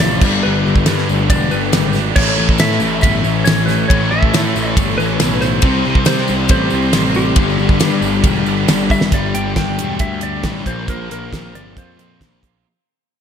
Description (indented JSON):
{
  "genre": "classic rock",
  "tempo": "138 BPM",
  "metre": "4/4",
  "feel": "straight",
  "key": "unclear",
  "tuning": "A4 = 441 Hz",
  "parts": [
    { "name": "clean lap steel guitar", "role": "melody", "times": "0.0-12.4 s", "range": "G4 to G5", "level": "-22 LUFS", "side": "equal", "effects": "slapback echo" },
    { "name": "tonewheel organ", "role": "sustained chords", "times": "0.0-9.1 s", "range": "G3 to D5", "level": "-30 LUFS", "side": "right 2 dB", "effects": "none" },
    { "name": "overdriven electric guitar", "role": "riff", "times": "0.0-12.7 s", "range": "G2 to B4", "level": "-22 LUFS", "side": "right 12 dB", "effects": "slapback echo" },
    { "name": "sludgy distorted guitar", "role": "riff", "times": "0.0-12.4 s", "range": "F2 to C4", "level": "-19 LUFS", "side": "left 8 dB", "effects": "overdrive" },
    { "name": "fuzz picked electric bass", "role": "bass", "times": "0.0-12.6 s", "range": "E1 to C3", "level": "-20 LUFS", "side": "right 1 dB", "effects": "overdrive" },
    { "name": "tambourine", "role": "percussion", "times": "0.0-9.1 s", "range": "none", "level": "-33 LUFS", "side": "left 12 dB", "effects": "none" },
    { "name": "damped 70s drum kit", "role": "drums", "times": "0.2-12.5 s", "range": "crash cymbal, hi-hat, kick drum, ride cymbal, snare drum", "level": "-17 LUFS", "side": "right 1 dB", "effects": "none" }
  ],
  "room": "light reverb, small room ambience",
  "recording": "none",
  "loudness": "-13 LUFS",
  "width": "side -8 dB against mid",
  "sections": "0.0-9.1 A section; 9.1-12.6 B section",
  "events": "drum fill 8.9; fade-out 9.1-12.6",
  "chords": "0.2 Gadd9; 2.2 A; 5.6 C; 7.4 G; 9.1 Gadd9; 10.7 Bbsus2"
}